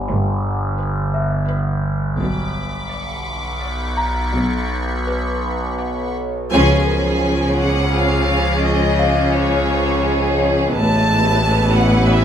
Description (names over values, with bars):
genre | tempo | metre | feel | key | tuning
cinematic | 85 BPM | 3/4 | straight | unclear | A4 = 440 Hz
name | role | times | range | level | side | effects
overtone-sweeping drone | drone | 0.0-12.2 s | G1 to C#2 | -22 LUFS | equal | chorus, built-in reverb
music box | texture | 0.0-12.2 s | C#4 to A#5 | -28 LUFS | left 2 dB | none
clear studio double bass section | bass | 0.1-12.2 s | G1 to C#2 | -22 LUFS | right 1 dB | none
rich symphonic cello section | bass | 0.1-12.2 s | G2 to C#3 | -21 LUFS | equal | none
rich chamber violin section | melody | 0.8-12.2 s | B4 to A5 | -22 LUFS | left 2 dB | none
clear chamber violin section | texture | 2.2-10.4 s | C#5 to D7 | -31 LUFS | equal | none
clear chamber violin section | second line | 6.5-12.2 s | C#4 to B4 | -22 LUFS | right 1 dB | none
rich studio viola section | accompaniment | 6.5-12.2 s | E3 to C#4 | -20 LUFS | equal | none
room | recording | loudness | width
wet stone room reverb, RT60 0.9 s | none | -16 LUFS | side -9 dB against mid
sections
0.0-6.5 A section; 6.5-12.2 B section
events
band accent 6.5-7.2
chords
0.0 Gadd9; 2.2 Bm; 6.5 C#; 10.7 Aadd9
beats
| 0.10 0.79 1.50 | 2.20 2.90 3.62 | 4.34 5.07 5.80 | 6.52 7.24 7.95 | 8.66 9.36 10.05 | 10.74 11.44 12.12